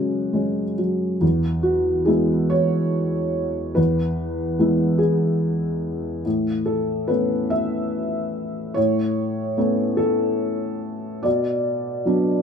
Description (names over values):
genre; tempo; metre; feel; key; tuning
neoclassical minimalist piano; 72 BPM; 3/4; rubato; unclear; A4 = 439 Hz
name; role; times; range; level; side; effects
felt-muted upright piano; solo; 0.0-12.4 s; E2 to E5; -20 LUFS; equal; none
room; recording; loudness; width
moderate stone room reverb, RT60 1.1 s; band playing live in one room; -20 LUFS; side -7 dB against mid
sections
0.0-1.2 A section; 1.2-12.4 B section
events
none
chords
0.0 F#sus2; 1.2 E; 6.3 Aadd9; 11.2 Bm